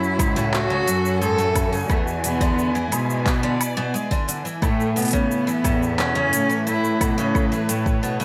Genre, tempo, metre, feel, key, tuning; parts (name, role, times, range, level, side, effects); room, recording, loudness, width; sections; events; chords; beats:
folktronica; 88 BPM; 4/4; straight; A major; A4 = 443 Hz
rich cello; melody; 0.0-7.2 s; A3 to A4; -26 LUFS; equal; delay
rich string quartet; sustained chords; 0.0-8.2 s; E3 to G#5; -33 LUFS; equal; vintage 12-bit sampler grit
picked twelve-string acoustic guitar; arpeggios; 0.0-8.2 s; F#2 to G#3; -28 LUFS; equal
organic electronic drum kit; drums; 0.0-8.2 s; handclaps, hi-hat, shaker, woodblock; -31 LUFS; equal; overdrive
clear cello; bass; 0.2-8.2 s; C#2 to B2; -28 LUFS; equal
electronic kick drum; drums; 0.2-8.0 s; -25 LUFS; equal; overdrive
light reverb; -21 LUFS; mono
0.0-8.2 A section
0.0 F#madd9; 1.9 E7; 4.6 Aadd9
0.53 1.22 | 1.90 2.58 3.26 3.94 | 4.62 5.31 5.99 6.67 | 7.35 8.03